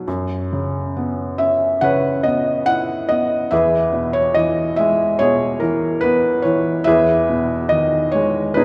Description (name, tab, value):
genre	classical, lyrical solo piano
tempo	71 BPM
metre	4/4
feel	rubato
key	unclear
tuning	A4 = 439 Hz
part	felt-muted upright piano	solo	0.0-8.6 s	E2 to F#5	-18 LUFS	equal	none
room	wet church reverb, RT60 3.0 s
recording	recorded in a church or concert hall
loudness	-18 LUFS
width	mono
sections	0.0-8.6 A section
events	none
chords	0.1 F#7sus4; 3.5 E6; 6.9 Emaj7